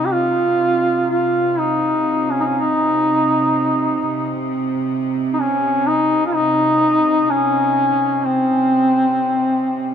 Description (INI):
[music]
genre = caucasian folk, Caucasian lament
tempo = 63 BPM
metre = 3/4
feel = rubato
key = C phrygian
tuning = A4 = 440 Hz
[part]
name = warm duduk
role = melody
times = 0.0-9.9 s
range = C4 to G4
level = -16 LUFS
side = equal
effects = none
[part]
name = rich chamber string section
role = drone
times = 0.0-9.9 s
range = C3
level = -24 LUFS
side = right 2 dB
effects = none
[sound]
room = wet cathedral reverb, RT60 6.8 s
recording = nothing above 10.5 kHz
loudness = -15 LUFS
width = side -8 dB against mid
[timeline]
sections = 0.0-9.9 A section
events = none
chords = none